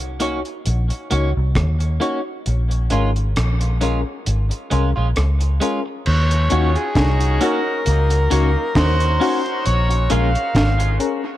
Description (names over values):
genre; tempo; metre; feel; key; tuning
dub reggae; 67 BPM; 4/4; swing 56% on 16ths; Eb dorian; A4 = 440 Hz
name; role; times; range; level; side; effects
vintage muted fingered electric bass; bass; 0.0-11.0 s; Ab1 to Eb2; -18 LUFS; equal; none
deep reggae drum kit; drums; 0.0-11.2 s; crash cymbal, hi-hat, kick drum, rim click, snare drum; -24 LUFS; equal; none
clean electric guitar; accompaniment; 0.2-10.3 s; Ab3 to Gb4; -27 LUFS; right 3 dB; lush chorus, high-pass filter, dub echo
reed electric piano; stabs; 0.2-11.2 s; Db4 to Db5; -26 LUFS; left 6 dB; overdrive, medium tremolo, high-pass filter, dub echo
overdriven harmonica; melody; 6.1-11.0 s; Ab4 to F5; -22 LUFS; left 1 dB; dub echo
warm horn section; second line; 6.5-9.4 s; Gb3 to Ab4; -27 LUFS; right 1 dB; high-pass filter, dub echo
room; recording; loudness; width
light reverb, small room ambience; none; -16 LUFS; side -14 dB against mid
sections
0.0-6.1 A section; 6.1-11.4 B section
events
break 0.0-6.1; kick muted 2.5-6.1; filter sweep 9.7-11.4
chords
0.0 Ebm7; 2.5 Bbm7; 6.1 Ebm7; 9.7 Bbm7